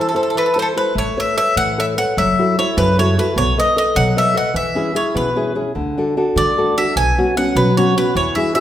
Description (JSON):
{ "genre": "italian folk, Italian serenade", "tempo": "100 BPM (dotted quarters)", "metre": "6/8", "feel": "straight", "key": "A major", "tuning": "A4 = 441 Hz", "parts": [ { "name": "bowl-back mandolin", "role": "melody", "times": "0.0-8.6 s", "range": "A4 to G#5", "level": "-18 LUFS", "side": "equal", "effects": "none" }, { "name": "nylon-string guitar", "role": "accompaniment", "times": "0.0-8.6 s", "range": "B2 to D#5", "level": "-18 LUFS", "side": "left 1 dB", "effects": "none" }, { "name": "upright bass", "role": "bass", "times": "1.0-8.3 s", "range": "F#1 to E3", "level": "-22 LUFS", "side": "right 1 dB", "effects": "none" } ], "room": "wet recital hall reverb, RT60 1.3 s", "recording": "recorded in a church or concert hall", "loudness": "-14 LUFS", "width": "side -11 dB against mid", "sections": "1.0-8.6 A section", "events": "break 0.0-1.0", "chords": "0.0 Am; 1.0 Aadd9; 2.2 F#m7; 3.4 B7; 4.6 E6; 5.8 D; 7.0 Bsus2" }